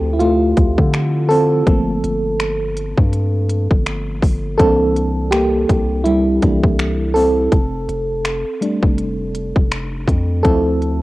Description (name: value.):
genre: contemporary R&B.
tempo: 82 BPM.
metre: 4/4.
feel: swing 58% on 16ths.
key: G dorian.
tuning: A4 = 440 Hz.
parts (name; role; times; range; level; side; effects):
FM electric piano with auto-pan; accompaniment; 0.0-11.0 s; E3 to A4; -17 LUFS; right 1 dB; cassette tape.
long sustained 808-style bass; bass; 0.0-11.0 s; F1 to D3; -20 LUFS; equal; none.
trap drum kit; drums; 0.2-11.0 s; finger snaps, hi-hat, kick drum; -17 LUFS; equal; overdrive, cassette tape.
room: little or no reverb.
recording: home recording on cassette.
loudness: -14 LUFS.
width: side -18 dB against mid.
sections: 0.0-11.0 A section.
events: FM electric piano solo 0.0-11.0.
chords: 0.0 Dm9; 1.7 Gm11; 4.6 C9; 7.5 F69; 10.4 Dm9.